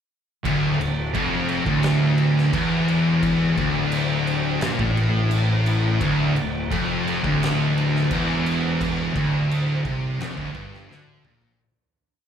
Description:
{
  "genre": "stoner and doom metal",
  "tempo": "86 BPM",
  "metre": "4/4",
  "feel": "straight",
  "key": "D minor",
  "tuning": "A4 = 440 Hz",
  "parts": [
    { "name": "thick fuzz guitar", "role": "riff", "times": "0.4-11.6 s", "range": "D2 to D3", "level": "-24 LUFS", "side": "left 6 dB", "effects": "distortion, slapback echo" },
    { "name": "thick fuzz guitar", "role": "riff", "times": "0.4-11.6 s", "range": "D2 to D3", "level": "-24 LUFS", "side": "right 5 dB", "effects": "distortion" },
    { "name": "scooped high-gain guitar", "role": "riff", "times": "0.5-11.6 s", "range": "D2 to D3", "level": "-28 LUFS", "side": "equal", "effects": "distortion, slapback echo" },
    { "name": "fuzz fingered electric bass", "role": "bass", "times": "0.5-11.6 s", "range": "D1 to D2", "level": "-30 LUFS", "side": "equal", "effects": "overdrive, tube saturation" },
    { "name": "oversized low-tuned drum kit", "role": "drums", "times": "0.5-11.6 s", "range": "crash cymbal, kick drum, snare drum, toms", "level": "-29 LUFS", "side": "right 1 dB", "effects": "none" }
  ],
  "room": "little or no reverb",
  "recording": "live gig heard through the venue's PA, club reverb",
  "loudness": "-19 LUFS",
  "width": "side -8 dB against mid",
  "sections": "0.5-11.6 riff",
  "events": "fade-out 8.8-11.6; drum fill 10.9-11.6",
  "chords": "0.5 Dm"
}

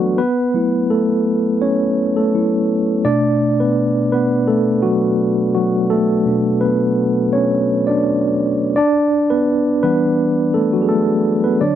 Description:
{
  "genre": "R&B",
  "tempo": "84 BPM",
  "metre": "4/4",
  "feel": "swing 53% on 16ths",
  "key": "unclear",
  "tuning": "A4 = 440 Hz",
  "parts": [
    { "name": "mellow tine electric piano", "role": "solo", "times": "0.0-11.8 s", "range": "B2 to D5", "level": "-14 LUFS", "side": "equal", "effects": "medium stereo tremolo" }
  ],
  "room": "moderate studio reverb, RT60 0.5 s",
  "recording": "dry, close 1970s-style studio recording",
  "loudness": "-14 LUFS",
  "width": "side -10 dB against mid",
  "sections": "0.0-11.8 A section",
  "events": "tine electric piano solo 0.0-11.8",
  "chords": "0.2 F#m7; 3.0 Bm9; 8.8 Em11"
}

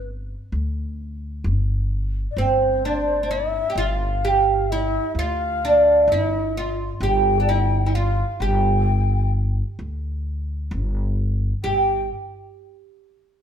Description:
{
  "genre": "turkish",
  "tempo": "130 BPM (eighths)",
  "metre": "10/8",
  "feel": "straight",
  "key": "G makam hicaz",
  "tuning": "A4 = 440 Hz",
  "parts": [
    { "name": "oud", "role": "melody", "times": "0.0-12.1 s", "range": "C4 to G4", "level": "-20 LUFS", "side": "right 3 dB", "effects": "none" },
    { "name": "breathy mellow low ney", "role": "second line", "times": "0.0-12.1 s", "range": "C5 to G5", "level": "-26 LUFS", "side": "left 6 dB", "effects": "none" },
    { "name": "upright bass", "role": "bass", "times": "0.0-12.1 s", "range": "G1 to D2", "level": "-23 LUFS", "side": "equal", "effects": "none" }
  ],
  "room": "moderate stone room reverb, RT60 1.1 s",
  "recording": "band playing live in one room",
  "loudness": "-19 LUFS",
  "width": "side -8 dB against mid",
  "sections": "0.0-11.6 A section; 11.6-13.4 B section",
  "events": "none",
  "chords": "none"
}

